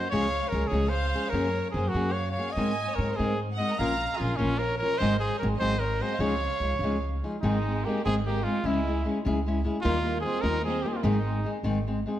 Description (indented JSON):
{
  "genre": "mexican folk, mariachi",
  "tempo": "99 BPM (dotted quarters)",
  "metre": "6/8",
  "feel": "rubato",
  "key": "Db major, Ab major from 7.4 s",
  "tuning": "A4 = 440 Hz",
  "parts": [
    { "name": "warm trumpet", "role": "melody", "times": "0.0-11.5 s", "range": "Db4 to F5", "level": "-30 LUFS", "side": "right 1 dB", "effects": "none" },
    { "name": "warm studio violin section", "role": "second line", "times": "0.0-11.5 s", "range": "Ab3 to Bb5", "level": "-35 LUFS", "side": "right 2 dB", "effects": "none" },
    { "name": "flamenco guitar", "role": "accompaniment", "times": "0.0-12.2 s", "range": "Ab2 to Bb4", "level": "-29 LUFS", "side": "left 2 dB", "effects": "none" },
    { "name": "upright bass", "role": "bass", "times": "0.1-12.0 s", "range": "Ab1 to Ab2", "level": "-30 LUFS", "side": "equal", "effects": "none" }
  ],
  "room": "moderate recital hall reverb, RT60 1.6 s",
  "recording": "none",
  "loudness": "-25 LUFS",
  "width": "side -12 dB against mid",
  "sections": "0.0-7.4 A section; 7.4-12.2 B section",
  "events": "none",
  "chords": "0.1 Db; 1.3 Gbadd9; 2.6 Abadd9; 3.8 Bbm; 5.0 Ab7; 6.2 Dbadd9; 7.4 Ab; 8.7 Dbm; 9.8 Ebadd9; 11.0 Ab"
}